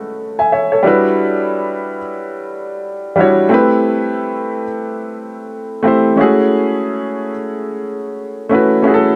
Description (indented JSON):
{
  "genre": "R&B",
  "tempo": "90 BPM",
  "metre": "4/4",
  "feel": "swing 60% on 16ths",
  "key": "F# phrygian",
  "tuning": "A4 = 441 Hz",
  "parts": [
    { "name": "warm upright piano", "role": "solo", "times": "0.0-9.2 s", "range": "G3 to G#5", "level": "-16 LUFS", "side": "equal", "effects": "none" }
  ],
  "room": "moderate small room reverb, RT60 0.6 s",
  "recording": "none",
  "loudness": "-15 LUFS",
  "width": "mono",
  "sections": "0.0-9.2 A section",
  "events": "none",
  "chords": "0.0 F#m9; 0.8 Em9; 3.5 Am9; 6.2 F#m9",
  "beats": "0.17 | 0.84 1.51 2.17 2.84 | 3.51 4.17 4.84 5.51 | 6.17 6.84 7.51 8.17 | 8.84"
}